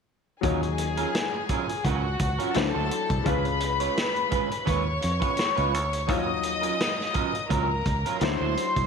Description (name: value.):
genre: lush 1970s-style soul.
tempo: 85 BPM.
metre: 4/4.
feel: swing 54% on 16ths.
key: Eb minor.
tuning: A4 = 440 Hz.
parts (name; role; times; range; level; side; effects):
warm studio string section; second line; 0.4-8.9 s; Gb4 to Eb6; -28 LUFS; left 3 dB; slapback echo.
clear baby grand piano; accompaniment; 0.4-8.9 s; F3 to Db5; -32 LUFS; left 12 dB; none.
electric guitar through a small old amp; riff; 0.4-8.8 s; Gb3 to Db5; -31 LUFS; right 14 dB; lush chorus.
fingered electric bass; bass; 0.4-8.9 s; C2 to F2; -28 LUFS; right 1 dB; none.
vintage drum kit; drums; 0.4-8.9 s; hi-hat, kick drum, snare drum; -30 LUFS; right 1 dB; none.
room: moderate plate reverb, RT60 1.7 s, small room ambience.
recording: 1960s-style stereo with parts hard left and right.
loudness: -23 LUFS.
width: side -6 dB against mid.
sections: 0.4-8.9 A section.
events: none.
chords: 0.4 Ebm9; 2.6 D9; 3.3 Db7; 6.1 Ebm9; 8.2 D9.